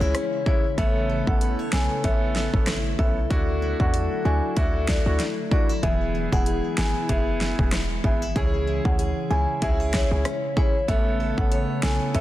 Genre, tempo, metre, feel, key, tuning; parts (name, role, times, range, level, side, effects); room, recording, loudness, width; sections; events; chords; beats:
dancehall; 95 BPM; 4/4; swing 56% on 16ths; C# phrygian; A4 = 440 Hz
warm baby grand piano; accompaniment; 0.0-12.2 s; G#3 to A4; -30 LUFS; right 1 dB
glassy FM pad; sustained chords; 0.0-12.2 s; B2 to E4; -32 LUFS; left 1 dB; ensemble chorus, built-in reverb, sidechain pumping
picked steel-string acoustic guitar; arpeggios; 0.0-12.2 s; C#3 to C#5; -32 LUFS; left 4 dB; tape echo
short 808-style bass; bass; 0.0-12.2 s; E1 to E2; -26 LUFS; equal
pop drum kit; drums; 0.1-12.2 s; hi-hat, kick drum, rim click, snare drum; -24 LUFS; equal; vintage 12-bit sampler grit
marimba with medium mallets; melody; 0.5-12.2 s; C#5 to G#5; -30 LUFS; equal; tape echo
small room ambience; dense, heavily limited modern master; -21 LUFS; side -14 dB against mid
0.0-12.2 A section
0.0 C#m; 0.8 Aadd9; 3.3 Dadd9; 5.8 E; 8.4 C#m; 10.9 Aadd9
0.15 | 0.78 1.41 2.04 2.67 | 3.31 3.94 4.57 5.20 | 5.83 6.46 7.09 7.73 | 8.36 8.99 9.62 10.25 | 10.88 11.52 12.15